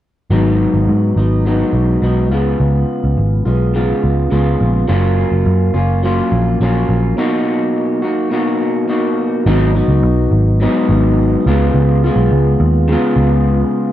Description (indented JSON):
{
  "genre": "indie pop, bedroom pop",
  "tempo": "105 BPM",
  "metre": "4/4",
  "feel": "straight",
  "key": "unclear",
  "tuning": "A4 = 440 Hz",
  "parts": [
    { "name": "electric guitar through a small old amp", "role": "accompaniment", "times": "0.3-13.9 s", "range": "G#2 to F#4", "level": "-15 LUFS", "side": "left 1 dB", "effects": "lush chorus, warbly pitch drift" },
    { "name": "vintage muted picked electric bass", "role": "bass", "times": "0.3-13.6 s", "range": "F#1 to G#2", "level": "-14 LUFS", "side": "equal", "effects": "none" }
  ],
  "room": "little or no reverb",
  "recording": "dry, close 1970s-style studio recording",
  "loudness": "-12 LUFS",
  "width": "side -12 dB against mid",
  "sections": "0.3-9.5 A section; 9.5-13.9 B section",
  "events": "break 7.2-9.5",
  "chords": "0.3 G#m7; 2.3 C#7; 4.9 F#maj7; 7.2 Bmaj7; 9.5 G#m7; 11.5 C#7",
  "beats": "| 0.31 0.89 1.46 2.03 | 2.60 3.17 3.75 4.32 | 4.89 5.46 6.03 6.61 | 7.18 7.75 8.32 8.89 | 9.46 10.04 10.61 11.18 | 11.75 12.32 12.89 13.46"
}